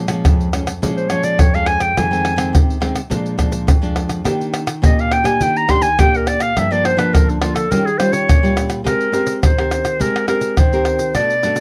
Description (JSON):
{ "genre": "samba and choro", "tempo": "104 BPM", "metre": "4/4", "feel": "straight", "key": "unclear", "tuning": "A4 = 440 Hz", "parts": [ { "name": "nylon-string guitar", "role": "accompaniment", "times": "0.0-11.6 s", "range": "F2 to Bb4", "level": "-22 LUFS", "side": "equal", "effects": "none" }, { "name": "egg shaker, pandeiro, tamborim and surdo", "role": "percussion", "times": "0.1-11.6 s", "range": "none", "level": "-19 LUFS", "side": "equal", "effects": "none" }, { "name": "clear clarinet", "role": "second line", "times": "1.0-11.6 s", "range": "D4 to C6", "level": "-20 LUFS", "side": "equal", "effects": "none" } ], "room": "light reverb", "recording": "close, detailed microphones", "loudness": "-16 LUFS", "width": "mono", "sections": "0.0-8.9 A section; 8.9-11.6 B section", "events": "clarinet solo 0.0-8.9, 8.9-11.6", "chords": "0.0 Bbm7; 2.0 Fm7; 3.1 Bb7; 4.3 Ebmaj7; 6.6 Gm7; 7.7 Eb9; 8.9 Abmaj9", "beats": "0.25 0.83 1.40 | 1.97 2.55 3.12 3.70 | 4.27 4.84 5.42 5.99 | 6.57 7.14 7.71 8.29 | 8.86 9.44 10.01 10.59 | 11.16" }